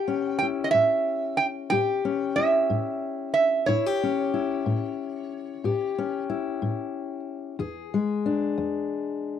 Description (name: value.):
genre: acoustic country blues, solo or duo.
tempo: 61 BPM (dotted quarters).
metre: 12/8.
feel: straight.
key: unclear.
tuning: A4 = 440 Hz.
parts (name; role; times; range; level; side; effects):
metal-body resonator slide guitar; melody; 0.0-6.2 s; C#5 to G5; -24 LUFS; right 4 dB; none.
fingerpicked steel-string acoustic guitar; accompaniment; 0.0-9.4 s; E2 to G#4; -26 LUFS; left 6 dB; none.
room: studio ambience.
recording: dry, close 1970s-style studio recording.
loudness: -24 LUFS.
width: side -9 dB against mid.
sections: 0.0-9.4 A section.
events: none.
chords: 0.0 A7; 7.6 E7.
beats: 0.73 1.71 2.69 | 3.67 4.65 5.62 6.60 | 7.58 8.55.